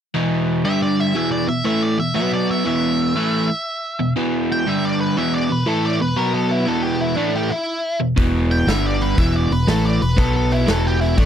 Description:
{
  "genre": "blues rock power trio and southern rock",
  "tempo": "120 BPM",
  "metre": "4/4",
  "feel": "swing 67% on 8ths",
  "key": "E minor",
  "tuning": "A4 = 440 Hz",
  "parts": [
    { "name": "overdriven electric guitar", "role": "riff", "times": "0.1-11.3 s", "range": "E2 to B3", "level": "-18 LUFS", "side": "equal", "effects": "none" },
    { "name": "octave-fuzz lead guitar", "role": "melody", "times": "0.7-11.3 s", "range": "D4 to G5", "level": "-23 LUFS", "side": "equal", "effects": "distortion, slapback echo" },
    { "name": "growling fingered electric bass", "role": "bass", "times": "8.2-11.3 s", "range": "E1 to B1", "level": "-20 LUFS", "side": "equal", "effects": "overdrive" },
    { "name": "big rock drum kit", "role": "drums", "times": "8.2-11.3 s", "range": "hi-hat, kick drum, snare drum", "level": "-21 LUFS", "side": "equal", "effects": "none" }
  ],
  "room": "little or no reverb",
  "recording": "dry, close 1970s-style studio recording",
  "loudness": "-17 LUFS",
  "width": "side -9 dB against mid",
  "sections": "0.1-11.3 A section",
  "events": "none",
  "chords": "0.1 E5; 0.7 G5; 1.2 E5; 2.2 B5; 2.7 E5; 4.7 G5; 5.2 E5; 6.2 B5; 6.7 E5; 8.7 G5; 9.2 E5; 10.2 B5; 10.7 E5"
}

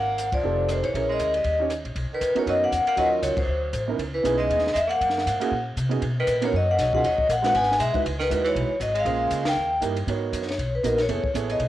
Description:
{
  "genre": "jazz, small-group swing and bop",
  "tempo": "237 BPM",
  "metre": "4/4",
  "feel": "swing 57% on 8ths",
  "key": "G# minor",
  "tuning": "A4 = 440 Hz",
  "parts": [
    { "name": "vibraphone with medium hard mallets", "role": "melody", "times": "0.0-11.7 s", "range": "A#4 to G#5", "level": "-23 LUFS", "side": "left 2 dB", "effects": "plate reverb" },
    { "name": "bright tenor saxophone", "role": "second line", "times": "0.0-9.8 s", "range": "Eb3 to B3", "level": "-32 LUFS", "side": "right 6 dB", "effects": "cassette tape, plate reverb" },
    { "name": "upright bass", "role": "bass", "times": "0.0-11.7 s", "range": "F1 to B#2", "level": "-29 LUFS", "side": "equal", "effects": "none" },
    { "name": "compact cocktail drum kit", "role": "drums", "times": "0.2-11.7 s", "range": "hi-hat, kick drum, ride cymbal, rim click, snare drum", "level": "-33 LUFS", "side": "equal", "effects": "cassette tape" },
    { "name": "warm concert grand piano", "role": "accompaniment", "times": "0.4-11.6 s", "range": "F#3 to D#5", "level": "-29 LUFS", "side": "right 7 dB", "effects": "cassette tape, plate reverb" }
  ],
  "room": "moderate studio reverb, RT60 0.7 s",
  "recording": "home recording on cassette",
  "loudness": "-21 LUFS",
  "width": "side -13 dB against mid",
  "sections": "0.0-2.0 A section; 2.0-10.1 B section; 10.1-11.7 C section",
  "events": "band accent 0.3, 3.4, 9.4; vibraphone solo 10.1-11.7",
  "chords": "0.4 F7; 0.9 A#m7b5; 1.5 D#7; 2.0 Bmaj9; 3.0 D#m7; 3.5 D7; 4.0 C#m7; 5.0 F#add9; 6.0 Bmaj9; 7.0 D#m; 7.5 G#m7; 8.0 C#m11; 9.1 A#m9; 9.6 D#; 10.1 G#m11; 11.1 F#m11"
}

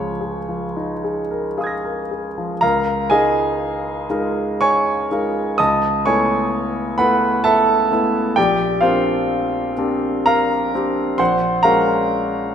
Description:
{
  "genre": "classical, impressionist solo piano",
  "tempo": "63 BPM",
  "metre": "3/4",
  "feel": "uneven beats, rubato",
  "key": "Db lydian",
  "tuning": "A4 = 440 Hz",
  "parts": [
    { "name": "warm concert grand piano", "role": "solo", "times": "0.0-12.5 s", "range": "Bb1 to Bb6", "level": "-16 LUFS", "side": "equal", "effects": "none" }
  ],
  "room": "moderate scoring stage reverb, RT60 1.5 s",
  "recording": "none",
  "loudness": "-16 LUFS",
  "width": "side -8 dB against mid",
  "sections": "0.0-2.6 A section; 2.6-12.5 B section",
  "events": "none",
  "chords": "0.0 Db69; 5.6 Aadd9/C#; 8.4 Bb69; 11.2 Gbadd9/Bb"
}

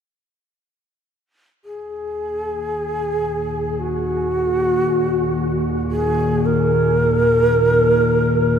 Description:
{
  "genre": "dark ambient drone",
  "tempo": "free time",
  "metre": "none",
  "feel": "none",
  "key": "Eb minor",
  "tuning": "A4 = 440 Hz",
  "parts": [
    { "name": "breathy long shakuhachi", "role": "melody", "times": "1.6-8.6 s", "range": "Gb4 to Bb4", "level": "-18 LUFS", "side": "right 1 dB", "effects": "diffuse ambient delay" },
    { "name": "bowed-like drone", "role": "drone", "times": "2.6-8.6 s", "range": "Eb2 to Bb2", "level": "-21 LUFS", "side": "left 2 dB", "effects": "built-in reverb" }
  ],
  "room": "wet huge ambient reverb, RT60 8.0 s",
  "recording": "none",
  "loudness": "-16 LUFS",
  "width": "side -8 dB against mid",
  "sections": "1.6-8.6 A section",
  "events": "none",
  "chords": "1.6 Eb5"
}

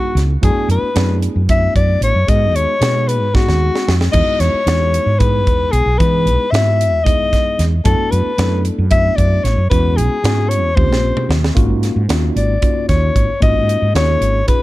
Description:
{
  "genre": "electric jazz fusion",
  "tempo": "226 BPM (eighths)",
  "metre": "7/8",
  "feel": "straight",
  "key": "E major",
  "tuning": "A4 = 439 Hz",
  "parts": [
    { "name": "breathy soprano saxophone", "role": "melody", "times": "0.0-14.6 s", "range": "F#4 to E5", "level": "-18 LUFS", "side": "left 3 dB", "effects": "none" },
    { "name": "tine electric piano", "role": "accompaniment", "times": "0.0-14.6 s", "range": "Bb2 to A4", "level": "-23 LUFS", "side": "right 1 dB", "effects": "medium stereo tremolo" },
    { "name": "woody fretless electric bass", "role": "bass", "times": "0.1-14.4 s", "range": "Ab1 to E3", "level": "-16 LUFS", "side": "equal", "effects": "none" },
    { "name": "crisp fusion drum kit", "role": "drums", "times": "0.2-14.6 s", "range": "crash cymbal, hi-hat, kick drum, snare drum, toms", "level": "-18 LUFS", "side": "equal", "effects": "none" }
  ],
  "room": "little or no reverb",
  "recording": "dark, warm production, faint mains hum",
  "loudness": "-12 LUFS",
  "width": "side -17 dB against mid",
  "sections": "0.0-11.6 A section; 11.6-14.6 B section",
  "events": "drum fill 3.3-4.1, 10.8-11.6; soprano saxophone solo 11.6-14.6",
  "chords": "0.4 D69/F#; 2.3 G#m7; 4.1 Emaj9; 7.9 D69/F#; 9.7 E69; 10.8 D#13; 11.6 Ab13sus4"
}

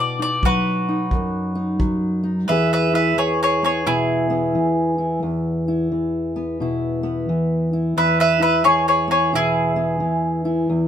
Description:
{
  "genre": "acoustic country blues, solo or duo",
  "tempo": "88 BPM",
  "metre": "4/4",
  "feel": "swing 63% on 8ths",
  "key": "E major",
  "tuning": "A4 = 440 Hz",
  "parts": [
    { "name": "bowl-back mandolin", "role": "melody", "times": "0.0-10.7 s", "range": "E4 to E5", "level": "-19 LUFS", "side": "right 1 dB", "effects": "none" },
    { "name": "fingerpicked steel-string acoustic guitar", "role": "accompaniment", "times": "0.0-10.9 s", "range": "E2 to G#4", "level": "-20 LUFS", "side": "left 1 dB", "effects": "none" },
    { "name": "kick drum", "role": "drums", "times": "0.4-2.0 s", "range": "none", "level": "-22 LUFS", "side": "equal", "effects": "none" }
  ],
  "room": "light reverb",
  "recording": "minimal, uncompressed stereo recording",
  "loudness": "-17 LUFS",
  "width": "side -9 dB against mid",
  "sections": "0.0-2.5 A section; 2.5-10.9 B section",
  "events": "mandolin solo 2.5-10.9",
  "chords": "0.0 B; 2.5 E"
}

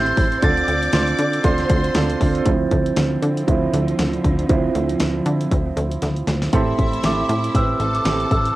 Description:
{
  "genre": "piano-driven pop",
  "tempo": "118 BPM",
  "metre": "4/4",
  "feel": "swing 56% on 16ths",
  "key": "unclear",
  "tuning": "A4 = 442 Hz",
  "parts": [
    { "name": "glockenspiel with rubber mallets", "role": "melody", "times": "0.0-1.9, 6.5-8.4 s", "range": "C6 to A6", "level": "-23 LUFS", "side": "equal", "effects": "cassette tape" },
    { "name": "clear symphonic violin section", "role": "second line", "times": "0.0-2.4, 6.5-8.6 s", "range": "E4 to D6", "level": "-28 LUFS", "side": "left 2 dB", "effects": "cassette tape" },
    { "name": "clear concert grand piano", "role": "accompaniment", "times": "0.0-8.6 s", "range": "A2 to C5", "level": "-22 LUFS", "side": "right 4 dB", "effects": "cassette tape" },
    { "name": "plucky analog bass", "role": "bass", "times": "0.0-8.5 s", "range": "A1 to D3", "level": "-22 LUFS", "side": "equal", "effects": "none" },
    { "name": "pop drum kit", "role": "drums", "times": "0.1-8.6 s", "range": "hi-hat, kick drum, snare drum", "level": "-22 LUFS", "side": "equal", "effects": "cassette tape" },
    { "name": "warm studio string section", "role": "sustained chords", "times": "2.5-6.5 s", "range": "D3 to C4", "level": "-28 LUFS", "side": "equal", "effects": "cassette tape" }
  ],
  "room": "light reverb",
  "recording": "home recording on cassette",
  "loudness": "-17 LUFS",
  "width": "side -16 dB against mid",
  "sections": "0.0-2.5 A section; 2.5-6.5 B section; 6.5-8.6 C section",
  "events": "grand piano solo 2.5-6.5; drum fill 6.0-6.5",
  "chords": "0.4 Dm7; 6.5 Am7"
}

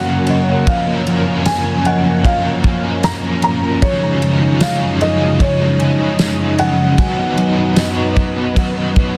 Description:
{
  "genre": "dream pop",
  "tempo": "76 BPM",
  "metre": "4/4",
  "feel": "straight",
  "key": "F# major",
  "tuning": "A4 = 440 Hz",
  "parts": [
    { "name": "felt-muted upright piano", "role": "melody", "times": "0.0-9.2 s", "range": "C#5 to A#5", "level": "-23 LUFS", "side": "equal", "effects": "digital delay, shimmer reverb" },
    { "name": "biting overdriven guitar", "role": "accompaniment", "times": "0.0-9.2 s", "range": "F#2 to A#4", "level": "-23 LUFS", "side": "equal", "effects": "tremolo, ensemble chorus, shimmer reverb" },
    { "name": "string machine, violas", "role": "sustained chords", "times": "0.0-9.2 s", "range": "F#2 to D#5", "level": "-21 LUFS", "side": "equal", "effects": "ensemble chorus" },
    { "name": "clean electric guitar", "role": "arpeggios", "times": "0.0-9.2 s", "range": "E#3 to D#4", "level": "-22 LUFS", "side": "equal", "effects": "lush chorus, digital delay" },
    { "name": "loose indie drum kit", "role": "drums", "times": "0.3-9.1 s", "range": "kick drum, ride cymbal, snare drum, tambourine", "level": "-21 LUFS", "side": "equal", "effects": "none" },
    { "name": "synth chime", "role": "texture", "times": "0.3-9.2 s", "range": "C#5 to G#5", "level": "-35 LUFS", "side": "equal", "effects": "none" }
  ],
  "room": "light reverb, studio reverb",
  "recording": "dense, heavily limited modern master",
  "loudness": "-15 LUFS",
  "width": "mono",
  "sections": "0.0-9.2 A section",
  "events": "none",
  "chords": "0.0 F#; 3.8 C#add9/F#; 7.0 B/F#"
}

